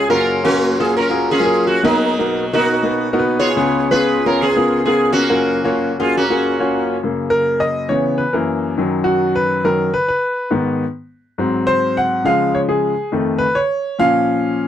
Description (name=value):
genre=gospel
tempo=138 BPM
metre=4/4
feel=swing 61% on 8ths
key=F# major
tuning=A4 = 440 Hz
part: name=sitar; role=melody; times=0.0-7.0 s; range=F#3 to C#5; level=-16 LUFS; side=right 1 dB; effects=none
part: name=bright upright piano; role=accompaniment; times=0.0-14.7 s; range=F#1 to F#5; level=-16 LUFS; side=left 1 dB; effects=none
room=light reverb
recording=dry, close 1970s-style studio recording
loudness=-14 LUFS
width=side -10 dB against mid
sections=0.0-7.0 A section; 7.0-14.7 B section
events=upright piano solo 7.0-14.7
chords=0.1 F#maj7; 1.8 Bmaj7; 3.6 C#7; 5.3 F#maj7; 7.0 F#; 7.9 C#m7; 8.3 F#7; 8.8 B/F#; 10.5 G#m; 11.4 G#7; 12.3 C#; 13.1 Faug7; 14.0 A#m